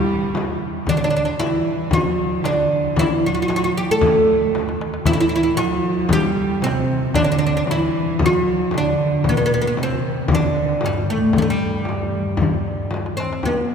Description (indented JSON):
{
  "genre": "Arabic maqam ensemble",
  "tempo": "115 BPM",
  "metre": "4/4",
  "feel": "straight",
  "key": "G maqam rast",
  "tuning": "A4 = 441 Hz",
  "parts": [
    { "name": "oud", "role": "melody", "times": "0.0-13.7 s", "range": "G3 to A4", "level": "-20 LUFS", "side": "equal", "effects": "none" },
    { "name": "dark cello", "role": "second line", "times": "0.0-12.9 s", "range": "G2 to A3", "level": "-23 LUFS", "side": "right 3 dB", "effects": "none" },
    { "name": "darbuka", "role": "percussion", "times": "0.2-13.4 s", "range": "none", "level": "-26 LUFS", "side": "left 4 dB", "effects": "none" },
    { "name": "frame drum", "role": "percussion", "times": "0.3-13.6 s", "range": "none", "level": "-25 LUFS", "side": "left 2 dB", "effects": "none" }
  ],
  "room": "wet cathedral reverb, RT60 5.3 s",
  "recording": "recorded in a church or concert hall",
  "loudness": "-17 LUFS",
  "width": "side -6 dB against mid",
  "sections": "0.0-13.4 A section",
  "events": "drum fill 4.5-5.1, 12.9-13.4",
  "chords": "none",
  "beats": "0.37 | 0.89 1.41 1.93 2.45 | 2.98 3.50 4.02 4.54 | 5.06 5.59 6.11 6.63 | 7.15 7.68 8.20 8.72 | 9.24 9.77 10.29 10.81 | 11.34 11.86 12.38 12.91 | 13.43"
}